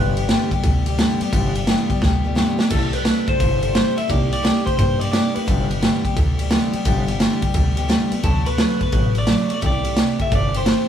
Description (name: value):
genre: rockabilly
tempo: 174 BPM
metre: 4/4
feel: swing 65% on 8ths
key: G major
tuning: A4 = 439 Hz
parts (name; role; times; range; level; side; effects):
- electric guitar through a small old amp; melody; 0.0-0.5, 2.7-6.0, 8.2-10.9 s; A4 to E5; -24 LUFS; equal; none
- picked steel-string acoustic guitar; accompaniment; 0.0-10.9 s; G2 to A4; -24 LUFS; left 4 dB; none
- upright bass; bass; 0.0-10.7 s; G1 to G2; -22 LUFS; equal; none
- raw garage drum kit; drums; 0.2-10.8 s; crash cymbal, kick drum, ride cymbal, snare drum; -19 LUFS; right 1 dB; none
room: light reverb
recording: band playing live in one room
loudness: -16 LUFS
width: side -9 dB against mid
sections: 0.0-10.9 A section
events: drum fill 2.0-2.7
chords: 0.0 G6; 2.7 C6; 4.1 Cm7; 5.5 G6; 8.2 D6; 9.6 C6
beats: 0.29 0.64 0.99 | 1.33 1.68 2.02 2.37 | 2.71 3.06 3.41 3.75 | 4.10 4.44 4.79 5.14 | 5.48 5.83 6.17 6.52 | 6.87 7.21 7.56 7.90 | 8.25 8.59 8.94 9.29 | 9.63 9.98 10.32 10.67